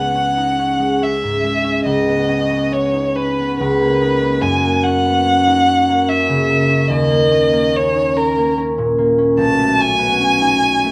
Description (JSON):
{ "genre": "classical, impressionist duo for violin and harp", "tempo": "72 BPM", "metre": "3/4", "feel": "rubato", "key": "unclear", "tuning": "A4 = 438 Hz", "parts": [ { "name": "warm violin", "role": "melody", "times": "0.0-10.9 s", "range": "A#4 to A5", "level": "-19 LUFS", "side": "equal", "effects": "none" }, { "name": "concert harp", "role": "accompaniment", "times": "0.0-10.9 s", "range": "B1 to D#4", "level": "-19 LUFS", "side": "equal", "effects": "none" } ], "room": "light reverb", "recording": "close, detailed microphones", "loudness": "-16 LUFS", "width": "mono", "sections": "0.0-10.9 A section", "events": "none", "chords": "0.0 B69/C#; 3.6 G#madd9/C#; 4.4 F#add9; 6.9 D#5; 9.4 B9" }